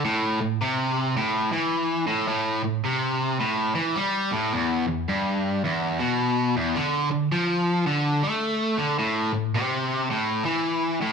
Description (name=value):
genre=rock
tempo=108 BPM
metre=4/4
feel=swing 63% on 8ths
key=unclear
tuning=A4 = 439 Hz
part: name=cranked stack guitar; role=solo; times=0.0-11.1 s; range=E2 to A3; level=-22 LUFS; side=equal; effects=overdrive
room=moderate large studio reverb, RT60 1.1 s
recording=band playing live in one room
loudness=-22 LUFS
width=side -6 dB against mid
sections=0.0-11.1 A section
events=none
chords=none